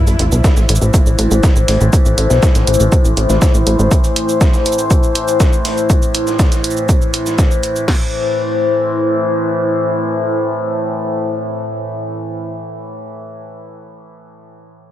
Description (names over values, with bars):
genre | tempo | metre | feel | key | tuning
melodic techno | 121 BPM | 4/4 | straight | A minor | A4 = 440 Hz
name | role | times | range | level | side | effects
dark analog pad | sustained chords | 0.0-12.5 s | A3 to C5 | -18 LUFS | left 2 dB | chorus, phaser, sidechain pumping
overtone-sweeping drone | drone | 0.4-12.5 s | A2 to E3 | -23 LUFS | equal | chorus, built-in reverb, sidechain pumping
sub drop | sound effects | 0.0-1.9 s | none | -22 LUFS | equal | none
plucky analog bass | bass | 0.1-3.9 s | A1 to B1 | -14 LUFS | equal | sidechain pumping
dusty soul sampler-style drum kit | drums | 0.1-7.8 s | hi-hat, shaker, snare drum | -26 LUFS | right 1 dB | overdrive, high-pass filter on perc, high-pass filter on hats, high-pass filter on snare, high-pass filter on room
electronic shaker and hi-hat | drums | 0.1-7.9 s | none | -22 LUFS | right 3 dB | none
punchy analog drum machine | drums | 0.4-8.0 s | crash cymbal, kick drum, snare drum | -12 LUFS | equal | none
room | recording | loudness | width
little or no reverb | none | -12 LUFS | side -12 dB against mid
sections
0.0-7.9 A section; 7.9-11.8 B section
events
impact 0.0-1.9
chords
0.0 Am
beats
0.44 0.94 1.43 | 1.93 2.43 2.92 3.42 | 3.91 4.41 4.91 5.40 | 5.90 6.39 6.89 7.38 | 7.88 8.38 8.87 9.37 | 9.86 10.36 10.86 11.35